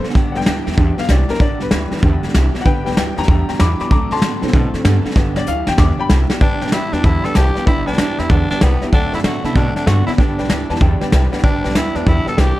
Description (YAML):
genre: rockabilly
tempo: 191 BPM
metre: 4/4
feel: swing 65% on 8ths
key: G major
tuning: A4 = 438 Hz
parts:
  - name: picked steel-string acoustic guitar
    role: accompaniment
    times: 0.0-12.6 s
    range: G2 to A4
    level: -26 LUFS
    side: left 2 dB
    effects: none
  - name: warm upright piano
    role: accompaniment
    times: 0.0-12.6 s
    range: D3 to D6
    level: -24 LUFS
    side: left 4 dB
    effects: none
  - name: electric guitar through a small old amp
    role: riff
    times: 0.0-12.6 s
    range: G2 to B3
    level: -23 LUFS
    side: right 4 dB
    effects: ensemble chorus
  - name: upright bass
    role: bass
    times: 0.0-12.6 s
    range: G1 to C3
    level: -18 LUFS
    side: equal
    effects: none
  - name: soft brush drum kit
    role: drums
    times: 0.0-12.5 s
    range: hi-hat, kick drum, snare drum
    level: -17 LUFS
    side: equal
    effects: none
  - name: raspy tenor saxophone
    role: melody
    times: 6.4-12.6 s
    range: B3 to A4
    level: -22 LUFS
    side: equal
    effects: none
room: small room ambience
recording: none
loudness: -13 LUFS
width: side -16 dB against mid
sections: 0.0-6.4 A section; 6.4-12.6 B section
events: upright piano solo 0.0-6.4; drum fill 5.2-6.4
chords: 0.2 G; 3.9 D7; 5.2 G; 8.9 D7; 10.2 G